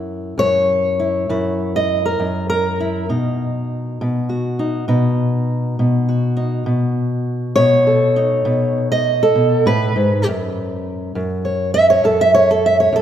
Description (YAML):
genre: acoustic country blues, solo or duo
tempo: 67 BPM (dotted quarters)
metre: 12/8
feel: straight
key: unclear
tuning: A4 = 438 Hz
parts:
  - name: fingerpicked steel-string acoustic guitar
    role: solo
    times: 0.0-13.0 s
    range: F#2 to E5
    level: -15 LUFS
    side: equal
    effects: none
room: moderate concert hall reverb, RT60 2.2 s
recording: none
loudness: -15 LUFS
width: side -10 dB against mid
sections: 0.0-13.0 A section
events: steel-string acoustic guitar solo 0.0-13.0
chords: 0.0 F#7; 3.1 B7; 10.3 F#5